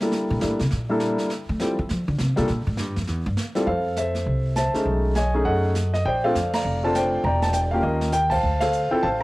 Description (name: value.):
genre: jazz piano trio.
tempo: 202 BPM.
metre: 4/4.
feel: swing 62% on 8ths.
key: F major.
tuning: A4 = 440 Hz.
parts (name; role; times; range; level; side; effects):
warm grand piano; melody; 0.0-9.2 s; G3 to Bb5; -22 LUFS; equal; none.
jazz brush drum kit; drums; 0.0-9.2 s; brushed snare drum, crash cymbal, hi-hat, kick drum, ride cymbal, snare drum; -33 LUFS; right 1 dB; cassette tape.
upright bass; bass; 0.3-9.2 s; E1 to A3; -24 LUFS; equal; none.
room: moderate spring reverb, RT60 1.6 s, small room ambience.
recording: home recording on cassette.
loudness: -20 LUFS.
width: side -20 dB against mid.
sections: 0.0-3.7 A section; 3.7-9.2 B section.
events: upright bass solo 0.0-3.7; band accent 6.5, 8.6; drum fill 7.8.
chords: 0.1 C13 (rootless); 1.3 Fmaj7; 2.5 Gm7; 3.1 C (rootless); 3.7 Fmaj7; 4.9 B13; 6.1 Bbmaj9; 7.2 Em7b5; 7.8 Eb9; 8.4 Dm7.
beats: | 0.12 0.42 0.71 1.01 | 1.30 1.60 1.90 2.19 | 2.49 2.78 3.08 3.38 | 3.67 3.97 4.27 4.56 | 4.86 5.16 5.46 5.75 | 6.05 6.35 6.65 6.94 | 7.24 7.54 7.84 8.13 | 8.43 8.73 9.03.